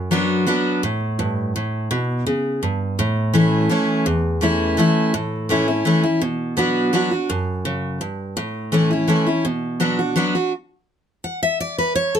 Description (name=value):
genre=bluegrass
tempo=167 BPM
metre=3/4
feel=straight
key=B minor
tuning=A4 = 438 Hz
part: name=picked steel-string acoustic guitar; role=solo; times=0.0-12.2 s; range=E2 to F#5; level=-18 LUFS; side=equal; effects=none
room=light reverb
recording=close, detailed microphones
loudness=-18 LUFS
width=side -8 dB against mid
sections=0.0-10.5 A section; 10.5-12.2 B section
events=steel-string acoustic guitar solo 10.5-12.2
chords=0.0 Bm; 0.8 Gsus2; 1.9 G; 3.0 A; 6.2 Bm; 8.4 A; 9.5 Bm; 10.5 N.C.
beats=0.12 0.48 | 0.83 1.19 1.55 | 1.91 2.27 2.63 | 2.98 3.34 3.70 | 4.06 4.42 4.78 | 5.14 5.50 5.86 | 6.21 6.58 6.93 | 7.29 7.65 8.01 | 8.37 8.73 9.09 | 9.45 9.81 10.17 | 10.53 10.89 11.25 | 11.61 11.97